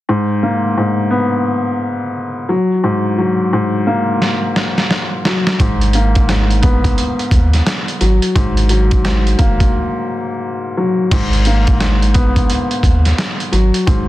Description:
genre	hip hop, boom-bap hip-hop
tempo	87 BPM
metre	4/4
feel	swing 63% on 16ths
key	G# minor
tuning	A4 = 440 Hz
part	dark upright piano	accompaniment	0.1-14.1 s	G#2 to B3	-16 LUFS	left 1 dB	cassette tape, high-pass filter, low-pass filter
part	trip hop sampler-style drum kit	drums	4.2-14.1 s	crash cymbal, hi-hat, kick drum, rim click, snare drum	-15 LUFS	equal	none
part	warm sub bass	bass	5.6-14.1 s	F#1 to D#2	-15 LUFS	equal	none
room	light reverb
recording	dense, heavily limited modern master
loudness	-12 LUFS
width	side -15 dB against mid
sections	0.1-11.1 A section; 11.1-14.1 B section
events	drum fill 4.2-5.6; break 9.7-11.1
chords	0.1 G#madd9; 2.5 F#/G#; 5.6 G#madd9; 8.0 F#; 11.1 G#madd9; 13.5 N.C.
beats	| 0.08 0.77 1.46 2.15 | 2.84 3.53 4.22 4.91 | 5.60 6.29 6.97 7.67 | 8.36 9.04 9.73 10.42 | 11.11 11.80 12.49 13.18 | 13.87

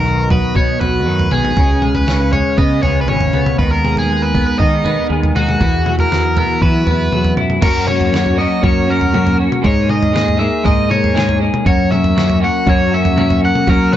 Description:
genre	indie rock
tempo	119 BPM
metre	4/4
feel	straight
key	unclear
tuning	A4 = 438 Hz
part	biting overdriven guitar	melody	0.0-14.0 s	F#4 to F#5	-18 LUFS	left 1 dB	none
part	chorused pulse-width pad	sustained chords	0.0-7.6, 12.1-14.0 s	F#3 to E#5	-29 LUFS	right 1 dB	none
part	twelve-string electric guitar	riff	0.0-14.0 s	B2 to G#4	-17 LUFS	equal	double-tracked left and right
part	growling fingered electric bass	bass	0.0-14.0 s	G#1 to F#3	-18 LUFS	equal	overdrive
part	lo-fi sampler-style drum kit	drums	0.3-14.0 s	crash cymbal, kick drum, snare drum, toms	-18 LUFS	equal	none
room	little or no reverb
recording	nothing above 7.8 kHz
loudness	-12 LUFS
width	side -11 dB against mid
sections	0.0-7.6 A section; 7.6-14.0 B section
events	none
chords	0.0 B; 1.6 C#7; 3.6 G#madd9/D#; 5.6 Eadd9; 7.6 F#; 9.6 G#sus2; 11.7 F#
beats	0.05 0.56 1.06 | 1.57 2.07 2.58 3.08 | 3.59 4.09 4.60 5.11 | 5.61 6.12 6.62 7.12 | 7.63 8.13 8.64 9.14 | 9.65 10.15 10.65 11.16 | 11.66 12.16 12.67 13.17 | 13.67

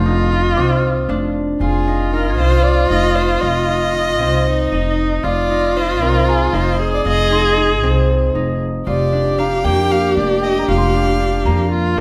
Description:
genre	contemporary instrumental, chamber music in an uneven meter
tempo	232 BPM (eighths)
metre	7/8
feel	straight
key	F dorian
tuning	A4 = 440 Hz
part	clear viola	second line	0.0-12.0 s	Eb4 to Ab4	-21 LUFS	equal	none
part	concert harp	arpeggios	0.0-12.0 s	Bb3 to F4	-24 LUFS	equal	none
part	upright bass	bass	0.0-12.0 s	F1 to F2	-21 LUFS	equal	none
part	worn celesta	texture	0.6-12.0 s	G5 to Eb7	-32 LUFS	equal	none
part	rich violin	melody	1.6-11.7 s	Ab4 to G5	-23 LUFS	equal	none
room	moderate recital hall reverb, RT60 1.7 s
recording	none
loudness	-16 LUFS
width	mono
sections	0.0-1.6 A section; 1.6-12.0 B section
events	none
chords	0.0 F5; 8.9 Bb/F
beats	0.05 0.31 0.57 0.83 1.09 1.35 | 1.61 1.87 2.13 2.39 2.65 2.90 3.16 | 3.42 3.68 3.94 4.20 4.46 4.72 4.98 | 5.24 5.50 5.76 6.02 6.28 6.53 6.79 | 7.05 7.31 7.57 7.83 8.09 8.35 8.61 | 8.87 9.13 9.38 9.64 9.90 10.16 10.42 | 10.68 10.94 11.20 11.46 11.71 11.97

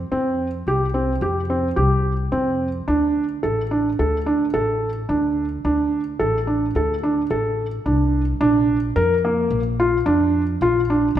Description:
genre	contemporary instrumental, chamber music in an uneven meter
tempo	108 BPM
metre	5/4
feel	straight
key	Bb major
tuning	A4 = 440 Hz
part	upright bass	bass	0.0-11.2 s	A1 to F2	-24 LUFS	left 1 dB	none
part	felt-muted upright piano	arpeggios	0.1-11.2 s	Bb3 to Bb4	-19 LUFS	right 1 dB	none
room	wet recital hall reverb, RT60 1.6 s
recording	dark, warm production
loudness	-18 LUFS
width	side -11 dB against mid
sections	0.0-8.4 A section; 8.4-11.2 B section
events	none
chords	0.0 Fsus2; 2.9 D5; 8.4 Bb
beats	| 0.12 0.67 1.22 1.78 2.33 | 2.88 3.44 3.99 4.54 5.10 | 5.65 6.21 6.76 7.31 7.86 | 8.42 8.97 9.52 10.07 10.62 | 11.18

